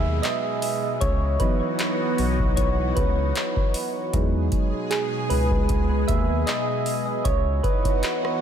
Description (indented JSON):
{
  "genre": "contemporary R&B",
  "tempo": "77 BPM",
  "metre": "4/4",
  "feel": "swing 54% on 16ths",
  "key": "E major",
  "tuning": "A4 = 440 Hz",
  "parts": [
    { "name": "soft electric-piano-like synth keys", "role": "accompaniment", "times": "0.0-8.4 s", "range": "E3 to E5", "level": "-26 LUFS", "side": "right 2 dB", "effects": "chorus, dub echo" },
    { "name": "lush unison pad", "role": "sustained chords", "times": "0.0-8.4 s", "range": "B2 to G#4", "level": "-29 LUFS", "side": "equal", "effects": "chorus, phaser, sidechain pumping" },
    { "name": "rubbery square bass", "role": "bass", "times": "0.0-7.6 s", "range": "B1 to E2", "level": "-24 LUFS", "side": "equal", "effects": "none" },
    { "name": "downlifter", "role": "sound effects", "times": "0.0-4.1 s", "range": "none", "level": "-46 LUFS", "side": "equal", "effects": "none" },
    { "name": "booming analog drum machine", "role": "drums", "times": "0.2-8.4 s", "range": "handclaps, hi-hat, kick drum, rim click", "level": "-25 LUFS", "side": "equal", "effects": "none" }
  ],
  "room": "digital ambience",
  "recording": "echo-heavy mix",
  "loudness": "-21 LUFS",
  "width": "side -8 dB against mid",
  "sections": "0.0-8.4 A section",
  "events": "synth keys solo 0.0-8.4",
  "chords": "0.0 Emaj7; 1.0 C#m11; 4.1 Emaj7; 7.2 C#m11"
}